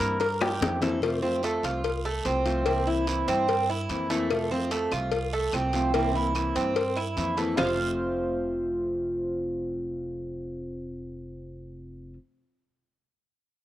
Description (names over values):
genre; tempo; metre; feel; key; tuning
latin, Cuban son and guajira; 146 BPM; 4/4; straight; F major; A4 = 439 Hz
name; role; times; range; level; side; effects
breathy trumpet; melody; 0.0-0.6 s; Bb4; -30 LUFS; equal; plate reverb
fingerpicked plugged-in steel-string acoustic guitar; accompaniment; 0.0-12.2 s; F2 to F4; -30 LUFS; left 1 dB; cassette tape, plate reverb
Cuban tres; arpeggios; 0.0-12.1 s; A3 to F5; -29 LUFS; right 3 dB; cassette tape, plate reverb
upright bass; bass; 0.0-12.1 s; F1 to G2; -34 LUFS; equal; none
cowbell and bongos; percussion; 0.0-7.7 s; none; -31 LUFS; left 5 dB; none
guiro; percussion; 0.0-7.7 s; none; -41 LUFS; right 6 dB; none
claves; percussion; 0.4-0.6, 4.3-7.7 s; none; -37 LUFS; left 4 dB; none
room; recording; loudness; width
wet booth ambience, RT60 0.2 s; home recording on cassette; -25 LUFS; side -13 dB against mid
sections
0.0-1.0 A section; 1.0-7.6 B section; 7.6-10.9 C section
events
drum fill 0.4-1.0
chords
0.0 C7; 1.0 F; 2.7 C7; 4.3 F; 5.9 C7; 7.6 F